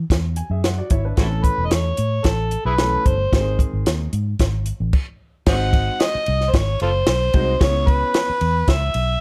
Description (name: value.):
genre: uptempo 1960s-style soul.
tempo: 112 BPM.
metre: 4/4.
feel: straight.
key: unclear.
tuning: A4 = 438 Hz.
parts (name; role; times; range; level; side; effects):
vintage muted fingered electric bass; bass; 0.0-9.2 s; E1 to A2; -24 LUFS; equal; none.
compact cocktail drum kit; drums; 0.1-9.1 s; crash cymbal, hi-hat, kick drum, ride cymbal, snare drum; -21 LUFS; equal; none.
warm baby grand piano; accompaniment; 0.4-8.3 s; D#3 to G#5; -30 LUFS; equal; none.
overdriven harmonica; melody; 1.2-9.2 s; E4 to F#5; -24 LUFS; equal; none.
room: light reverb.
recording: dark, warm production.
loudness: -20 LUFS.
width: mono.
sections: 0.0-5.5 A section; 5.5-9.2 B section.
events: grand piano fill 0.1-1.2; stop 4.9-5.5.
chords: 0.0 E7; 1.2 A; 3.3 G#; 5.5 G#7; 7.6 C#m7.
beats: 0.10 0.64 | 1.17 1.71 2.25 2.79 | 3.32 3.86 4.40 4.93 | 5.47 6.01 6.54 7.08 | 7.61 8.15 8.68.